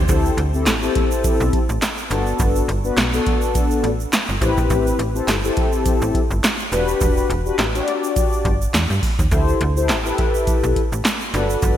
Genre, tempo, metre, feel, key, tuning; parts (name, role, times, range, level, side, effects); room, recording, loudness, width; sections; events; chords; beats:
early-eighties boogie funk; 104 BPM; 4/4; swing 56% on 16ths; A4 = 437 Hz
slap-like FM bass; bass; 0.0-11.8 s; E1 to G2; -22 LUFS; equal
mellow synth brass; accompaniment; 0.1-11.8 s; B3 to D5; -21 LUFS; left 3 dB; chorus
electro analog drum machine; drums; 0.1-11.8 s; handclaps, hi-hat, kick drum, snare drum; -20 LUFS; equal; gated reverb
egg shaker; percussion; 0.1-11.8 s; -34 LUFS; right 8 dB
moderate lush hall reverb, RT60 2.6 s; bright 1980s-style digital production; -16 LUFS; side -11 dB against mid
0.1-11.8 A section
0.1 D7sus4; 2.1 Gmaj7; 4.4 Am7; 6.7 Em7; 9.3 D7sus4
| 0.09 0.67 1.24 1.82 | 2.40 2.97 3.55 4.13 | 4.70 5.28 5.86 6.43 | 7.01 7.59 8.17 8.74 | 9.32 9.90 10.47 11.05 | 11.63